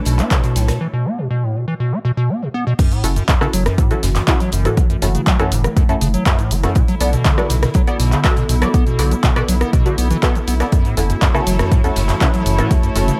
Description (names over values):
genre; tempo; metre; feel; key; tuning
acid house; 121 BPM; 4/4; straight; F# minor; A4 = 436 Hz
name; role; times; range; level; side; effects
warbly tape-like pad; sustained chords; 0.0-13.2 s; D3 to B4; -29 LUFS; equal; chorus, built-in reverb, sidechain pumping
clear studio string section; texture; 0.0-0.8, 6.8-13.2 s; E4 to C#5; -30 LUFS; equal; sidechain pumping
acid bass, square; riff; 0.1-13.1 s; E2 to B3; -22 LUFS; equal; overdrive, subtle chorus, vintage 12-bit sampler grit, delay
saturated sub bass; bass; 0.1-13.1 s; F#1 to B1; -20 LUFS; equal; sidechain pumping
natural country drum kit; drums; 0.1-13.1 s; hi-hat, snare drum; -39 LUFS; equal; none
punchy analog drum machine; drums; 0.1-13.2 s; crash cymbal, handclaps, hi-hat, rim click, shaker; -25 LUFS; equal; none
electronic kick drum; drums; 0.3-12.8 s; none; -18 LUFS; equal; none
filtered dub chord stab; stabs; 3.0-13.1 s; C#4 to E5; -26 LUFS; equal; phaser, lush chorus, cassette tape, delay
room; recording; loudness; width
digital ambience; none; -16 LUFS; mono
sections
0.0-2.8 A section; 2.8-13.2 B section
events
break 0.8-2.8; drop 2.8-13.2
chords
0.0 Bm7; 2.8 F#m7; 6.8 Bm7; 10.7 F#m7